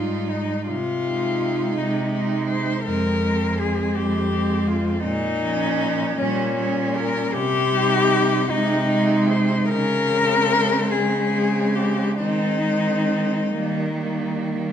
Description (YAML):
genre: classical, lyrical piece for cello ensemble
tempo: 44-57 BPM (dotted quarters)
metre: 6/8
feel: rubato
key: Ab major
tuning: A4 = 439 Hz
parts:
  - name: rich cello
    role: melody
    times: 0.0-14.4 s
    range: Db4 to C5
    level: -23 LUFS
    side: left 5 dB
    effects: none
  - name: rich cello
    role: second line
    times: 0.0-14.7 s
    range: Bb3 to Eb4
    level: -28 LUFS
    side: right 7 dB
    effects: none
  - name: rich cello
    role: accompaniment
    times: 0.0-14.7 s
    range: F3 to Ab3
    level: -25 LUFS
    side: equal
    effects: none
  - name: rich cello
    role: bass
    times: 0.0-14.7 s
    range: F2 to Eb3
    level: -26 LUFS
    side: right 2 dB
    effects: none
room: wet recital hall reverb, RT60 1.4 s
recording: none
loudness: -19 LUFS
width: side -9 dB against mid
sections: 0.0-14.7 A section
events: none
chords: 0.0 Eb/Ab; 0.7 Ab/C; 2.9 Fm; 5.1 Bbm; 6.2 Gdim/Bb; 7.3 Cm; 8.5 Ab/C; 9.7 Db5; 12.2 Ab/Eb; 13.5 Eb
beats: | 0.69 1.78 | 2.86 3.97 | 5.06 6.19 | 7.34 8.52 | 9.70 10.92 | 12.21 13.52